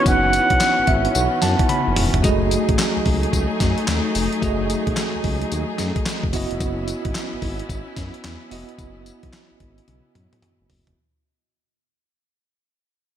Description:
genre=R&B, new jack swing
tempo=110 BPM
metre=4/4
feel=swing 64% on 16ths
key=F# dorian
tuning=A4 = 440 Hz
part: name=trumpet with plunger mute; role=melody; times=0.0-1.2 s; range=F#5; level=-20 LUFS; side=equal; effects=tape echo
part: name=bell-like tine electric piano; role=accompaniment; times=0.0-11.0 s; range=G#3 to B5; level=-24 LUFS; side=right 2 dB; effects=fast stereo tremolo
part: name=rich studio string section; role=sustained chords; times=0.0-10.9 s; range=E3 to G#4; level=-27 LUFS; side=left 2 dB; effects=none
part: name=smooth synth bass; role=bass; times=0.1-10.9 s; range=E1 to F#2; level=-25 LUFS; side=equal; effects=none
part: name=dusty soul sampler-style drum kit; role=drums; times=0.1-11.0 s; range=handclaps, hi-hat, kick drum, snare drum, tambourine, toms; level=-23 LUFS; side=left 1 dB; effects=gated reverb
room=light reverb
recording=none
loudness=-18 LUFS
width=side -10 dB against mid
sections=0.0-2.2 A section; 2.2-11.0 B section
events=tine electric piano fill 0.6-2.2; drum fill 1.7-2.2, 9.9-11.0; fade-out 2.2-11.0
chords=0.0 C#m11; 2.2 F#m69; 6.3 C#m11

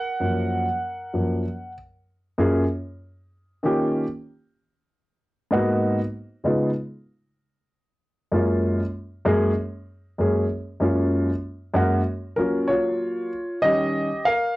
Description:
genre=hip hop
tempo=96 BPM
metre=4/4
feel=swing 60% on 16ths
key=F# major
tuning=A4 = 441 Hz
part: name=dark grand piano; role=solo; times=0.0-14.6 s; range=F#2 to F#5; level=-21 LUFS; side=equal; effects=cassette tape
room=wet small room reverb, RT60 0.5 s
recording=home recording on cassette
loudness=-21 LUFS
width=side -18 dB against mid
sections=0.0-2.4 A section; 2.4-12.4 A section; 12.4-14.6 B section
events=grand piano solo 0.0-2.4, 12.4-14.6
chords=0.0 F#maj7; 3.6 D#7; 4.9 G#m7; 6.1 C#7; 7.4 F#maj7; 13.6 D#7

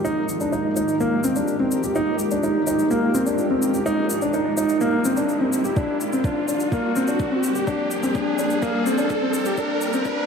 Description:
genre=piano and strings electronica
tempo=126 BPM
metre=4/4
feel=straight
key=F dorian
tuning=A4 = 440 Hz
part: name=granular cloud pad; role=sustained chords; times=0.0-10.3 s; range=F2 to Bb4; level=-26 LUFS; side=equal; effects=built-in reverb, sidechain pumping
part: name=dark grand piano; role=riff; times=0.0-10.2 s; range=Bb3 to G4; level=-21 LUFS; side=equal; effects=digital delay
part: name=riser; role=sound effects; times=1.4-10.3 s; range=none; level=-30 LUFS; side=right 2 dB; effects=none
part: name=shaker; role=drums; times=0.1-10.1 s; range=none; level=-34 LUFS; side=left 4 dB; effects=overdrive, high-pass filter on snare, high-pass filter on perc, high-pass filter on room
part: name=electronic kick drum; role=drums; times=5.8-10.1 s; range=none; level=-26 LUFS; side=equal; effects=none
room=wet lush hall reverb, RT60 1.9 s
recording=dark, warm production, high-pass filter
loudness=-19 LUFS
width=side -6 dB against mid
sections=0.0-10.3 A section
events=build-up 0.0-10.3; filter sweep 0.0-10.3; riser 1.4-10.3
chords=0.0 Fm11; 5.8 Gm/F

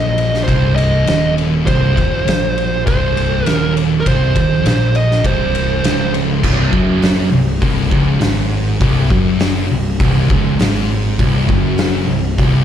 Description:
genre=stoner and doom metal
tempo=101 BPM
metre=4/4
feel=straight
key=unclear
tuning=A4 = 440 Hz
part: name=fuzz lead guitar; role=melody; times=0.0-6.1 s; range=Bb4 to Eb5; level=-19 LUFS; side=right 3 dB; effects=distortion, slapback echo
part: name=fuzz guitar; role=riff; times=0.0-12.6 s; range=C2 to Bb2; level=-19 LUFS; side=right 6 dB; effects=distortion
part: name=thick fuzz guitar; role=riff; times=0.0-12.6 s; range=C2 to Bb2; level=-18 LUFS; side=left 6 dB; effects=distortion
part: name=fuzz picked electric bass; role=bass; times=0.0-12.6 s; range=C1 to Bb1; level=-21 LUFS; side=equal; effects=overdrive
part: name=oversized low-tuned drum kit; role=drums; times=0.2-12.5 s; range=crash cymbal, hi-hat, kick drum, ride cymbal, snare drum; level=-18 LUFS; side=equal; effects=none
part: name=thick fuzz guitar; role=riff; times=6.4-12.6 s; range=C2 to Ab2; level=-23 LUFS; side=equal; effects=distortion
room=light reverb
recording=live gig heard through the venue's PA, club reverb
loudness=-12 LUFS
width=side -9 dB against mid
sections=0.0-6.4 A section; 6.4-12.6 B section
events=none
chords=0.0 Cm; 6.4 Ab7/C

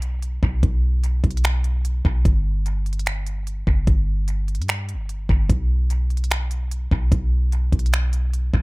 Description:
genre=hip hop, atmospheric cloud-rap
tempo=148 BPM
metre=4/4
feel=half-time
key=unclear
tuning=A4 = 442 Hz
part: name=soft 808-style bass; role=bass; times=0.0-8.6 s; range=F#1 to G2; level=-21 LUFS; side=equal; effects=none
part: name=smooth R&B drum kit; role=drums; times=0.0-8.6 s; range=finger snaps, hi-hat, kick drum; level=-21 LUFS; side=equal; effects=analog delay
room=little or no reverb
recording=echo-heavy mix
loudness=-19 LUFS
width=side -25 dB against mid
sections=0.0-8.6 A section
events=none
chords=none

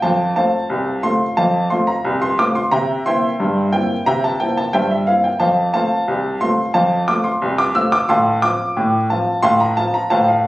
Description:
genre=ragtime piano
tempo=89 BPM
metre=2/4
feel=straight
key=F major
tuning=A4 = 443 Hz
part: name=clear upright piano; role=solo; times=0.0-10.5 s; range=C2 to E6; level=-15 LUFS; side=equal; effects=none
room=moderate studio reverb, RT60 0.9 s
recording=recorded on a phone in the room, club reverb, compression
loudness=-15 LUFS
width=side -17 dB against mid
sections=0.0-10.5 A section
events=none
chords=0.0 F; 2.7 C7; 5.4 F; 8.1 F/A

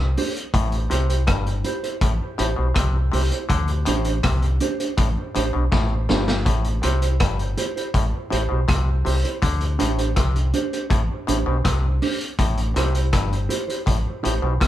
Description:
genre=roots reggae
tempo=81 BPM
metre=4/4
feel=straight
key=A minor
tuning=A4 = 440 Hz
part: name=deep dub fingered electric bass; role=bass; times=0.0-14.7 s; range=G1 to D2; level=-22 LUFS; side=equal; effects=none
part: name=mellow electric guitar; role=accompaniment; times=0.2-14.5 s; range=D4 to C5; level=-27 LUFS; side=right 4 dB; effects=dub echo
part: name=vintage drum kit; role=drums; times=0.2-14.7 s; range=hi-hat, kick drum, rim click, snare drum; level=-24 LUFS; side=equal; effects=none
part: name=bright clav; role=riff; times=0.5-14.7 s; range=G2 to D3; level=-29 LUFS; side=left 6 dB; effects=none
room=moderate studio reverb, RT60 0.9 s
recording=band playing live in one room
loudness=-19 LUFS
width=side -13 dB against mid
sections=0.0-14.7 A section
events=drum fill 5.7-6.5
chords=0.0 D7sus4; 0.5 Am7; 3.5 D7sus4; 6.5 Am7; 9.4 D7sus4; 12.4 Am7

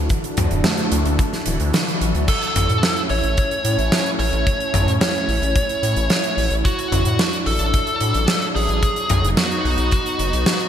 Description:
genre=synthwave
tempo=110 BPM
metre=4/4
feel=straight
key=unclear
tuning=A4 = 440 Hz
part: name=phased analog pad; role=sustained chords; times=0.0-10.7 s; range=D3 to A4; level=-26 LUFS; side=right 1 dB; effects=phaser, chorus, sidechain pumping
part: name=round analog bass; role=bass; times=0.0-10.5 s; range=D1 to A2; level=-21 LUFS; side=equal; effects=sidechain pumping
part: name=warbly dusty pluck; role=arpeggios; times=0.1-2.3 s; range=E3 to E4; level=-27 LUFS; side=left 1 dB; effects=chorus, ping-pong delay
part: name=huge arena drum kit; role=drums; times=0.1-10.7 s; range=crash cymbal, hi-hat, snare drum, toms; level=-22 LUFS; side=equal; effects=gated reverb
part: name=kick drum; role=drums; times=0.1-10.0 s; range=none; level=-23 LUFS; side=equal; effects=none
part: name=fuzz lead guitar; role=melody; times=2.3-10.7 s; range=F#4 to C#5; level=-22 LUFS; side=equal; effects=distortion, ping-pong delay
room=moderate lush hall reverb, RT60 2.6 s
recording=bright 1980s-style digital production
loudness=-17 LUFS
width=side -9 dB against mid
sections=0.0-2.3 A section; 2.3-10.7 B section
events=filter sweep on analog synth pad 0.0-2.3; filter sweep on synth arpeggio sound 0.0-2.3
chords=0.0 Dadd9; 2.3 A; 6.6 Dadd9/A; 8.8 B

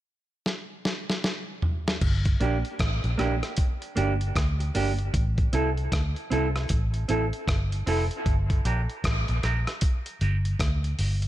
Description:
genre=dub reggae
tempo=77 BPM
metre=4/4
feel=swing 62% on 16ths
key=G dorian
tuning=A4 = 436 Hz
part: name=dusty soul sampler-style drum kit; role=drums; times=0.5-11.3 s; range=crash cymbal, hi-hat, kick drum, rim click, snare drum, toms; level=-27 LUFS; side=equal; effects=none
part: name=vintage muted fingered electric bass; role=bass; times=2.0-11.3 s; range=F1 to D2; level=-26 LUFS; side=equal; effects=none
part: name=mellow electric guitar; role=accompaniment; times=2.4-11.2 s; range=Bb3 to Bb4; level=-30 LUFS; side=right 3 dB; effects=tremolo, high-pass filter, dub echo
room=little or no reverb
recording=none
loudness=-24 LUFS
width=side -14 dB against mid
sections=0.0-2.0 A section; 2.0-11.3 B section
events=drum fill 0.5-2.0; filter sweep on clean electric guitar 5.1-11.3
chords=0.0 N.C.; 2.0 Gm; 5.1 Am; 8.3 Gm

